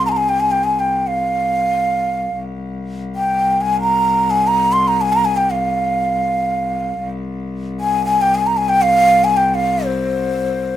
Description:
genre	Arabic maqam ensemble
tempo	free time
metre	none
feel	none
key	C maqam bayati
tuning	A4 = 441 Hz
part	breathy ney	melody	0.0-10.8 s	C5 to C6	-15 LUFS	equal	none
part	clear cello	drone	0.0-10.8 s	C2	-23 LUFS	left 2 dB	none
room	moderate small room reverb, RT60 0.5 s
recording	minimal, uncompressed stereo recording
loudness	-14 LUFS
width	side -12 dB against mid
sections	0.0-10.8 A section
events	none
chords	none

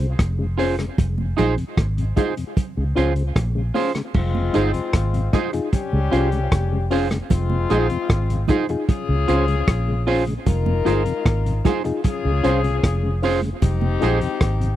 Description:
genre	roots reggae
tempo	76 BPM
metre	4/4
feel	straight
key	F minor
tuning	A4 = 440 Hz
part	mellow tonewheel organ	accompaniment	0.0-14.7 s	F2 to F4	-29 LUFS	left 3 dB	chorus vibrato, slow rotary speaker, dub echo
part	reed electric piano	stabs	0.0-14.2 s	Db4 to C5	-23 LUFS	left 4 dB	none
part	vintage muted fingered electric bass	bass	0.0-14.8 s	F1 to Db2	-22 LUFS	equal	tube saturation
part	vintage drum kit	drums	0.2-14.8 s	crash cymbal, hi-hat, kick drum, rim click	-20 LUFS	equal	none
part	congas	percussion	0.2-14.6 s	none	-30 LUFS	right 9 dB	none
part	semi-hollow electric guitar	accompaniment	0.6-14.2 s	Eb4 to C5	-26 LUFS	right 9 dB	dub echo
part	warm horn section	second line	4.2-14.8 s	G3 to Bb4	-26 LUFS	left 7 dB	dub echo
room	little or no reverb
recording	dry, close 1970s-style studio recording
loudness	-18 LUFS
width	side -13 dB against mid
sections	0.0-4.1 A section; 4.1-14.8 B section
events	none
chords	0.0 Dbmaj7; 1.0 Fm7; 2.6 Dbmaj7; 4.1 Fm7; 5.7 Dbmaj7; 7.3 Fm7; 8.9 Dbmaj7; 10.5 Fm7; 12.0 Dbmaj7; 13.6 Fm7

